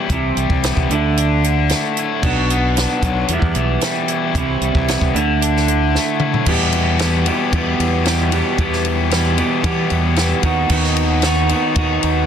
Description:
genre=indie rock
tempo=113 BPM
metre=4/4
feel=straight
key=E minor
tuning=A4 = 441 Hz
part: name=raw garage guitar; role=riff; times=0.0-12.3 s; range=E2 to F#4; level=-20 LUFS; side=left 9 dB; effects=overdrive
part: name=raw garage guitar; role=riff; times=0.0-12.3 s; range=E2 to G4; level=-20 LUFS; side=right 7 dB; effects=overdrive, lush chorus, digital delay
part: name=fuzz fingered electric bass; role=bass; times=0.1-12.3 s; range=B1 to E3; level=-19 LUFS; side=equal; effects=overdrive
part: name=compact cocktail drum kit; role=drums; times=0.1-12.2 s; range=crash cymbal, hi-hat, kick drum, ride cymbal, snare drum, toms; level=-21 LUFS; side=equal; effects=none
room=light reverb, small room ambience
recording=dense, heavily limited modern master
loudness=-14 LUFS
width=side -8 dB against mid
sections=0.0-6.5 A section; 6.5-12.3 B section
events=drum fill 5.9-6.5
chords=0.1 Cmaj7; 0.9 Dsus2; 2.2 Bm; 3.3 Em; 4.4 Cmaj7; 5.2 Dsus2; 6.5 Em; 10.4 B/D#

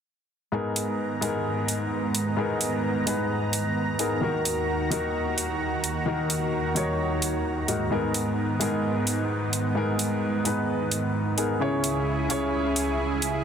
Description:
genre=EDM, festival progressive house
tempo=130 BPM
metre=4/4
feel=straight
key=G# minor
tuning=A4 = 442 Hz
part: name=warm baby grand piano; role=accompaniment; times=0.5-13.4 s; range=G#2 to C#5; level=-26 LUFS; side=left 2 dB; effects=digital delay
part: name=lush unison pad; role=sustained chords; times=0.5-13.4 s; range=C#2 to A#5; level=-28 LUFS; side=right 2 dB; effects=chorus
part: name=electronic hi-hat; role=drums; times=0.8-13.3 s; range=none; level=-28 LUFS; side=right 2 dB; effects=overdrive
room=light reverb, small room ambience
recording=dense, heavily limited modern master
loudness=-24 LUFS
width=side -8 dB against mid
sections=0.5-13.4 A section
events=none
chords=0.5 G#madd9; 4.2 D#m; 7.9 G#madd9; 11.6 C#m

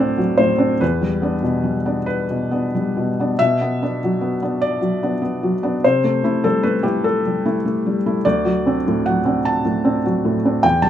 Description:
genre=neoclassical minimalist piano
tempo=49 BPM (dotted quarters)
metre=6/8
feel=rubato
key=unclear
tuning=A4 = 444 Hz
part: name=felt-muted upright piano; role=solo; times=0.0-10.9 s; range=D2 to A5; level=-16 LUFS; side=equal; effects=none
room=moderate studio reverb, RT60 0.5 s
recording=minimal, uncompressed stereo recording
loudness=-17 LUFS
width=side -10 dB against mid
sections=0.0-10.9 A section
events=none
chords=0.0 D7; 0.8 Em7; 3.4 Bm; 5.8 Am7/C; 8.2 D7

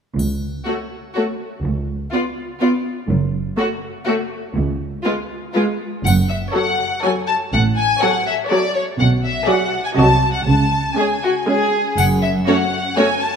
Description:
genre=cinematic, playful, whimsical film cue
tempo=122 BPM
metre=3/4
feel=straight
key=F# minor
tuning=A4 = 442 Hz
part: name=dark studio cello section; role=bass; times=0.2-12.4 s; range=C#2 to C#3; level=-21 LUFS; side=right 2 dB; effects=none
part: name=warm studio double bass section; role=bass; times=0.2-12.4 s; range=F#1 to C#2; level=-21 LUFS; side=right 2 dB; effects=none
part: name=triangle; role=percussion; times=0.2-1.1, 6.1-7.0, 12.0-12.9 s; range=none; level=-34 LUFS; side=left 3 dB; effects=none
part: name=warm studio violin section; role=melody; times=0.7-13.4 s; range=B4 to A5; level=-20 LUFS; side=left 3 dB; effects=none
part: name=clear symphonic violin section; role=second line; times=0.7-13.1 s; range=E#4 to Eb5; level=-23 LUFS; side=left 2 dB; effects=none
part: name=rich studio viola section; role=accompaniment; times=0.7-13.1 s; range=F#3 to F#4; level=-21 LUFS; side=right 1 dB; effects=none
room=moderate scoring stage reverb, RT60 2.1 s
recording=none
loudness=-16 LUFS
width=side -7 dB against mid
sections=0.2-6.1 A section; 6.1-13.4 B section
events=none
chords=0.2 N.C.; 6.1 F#m; 7.5 F#m/A; 9.0 G#m7b5/B; 10.0 Cdim7; 10.5 C#5; 12.0 N.C.

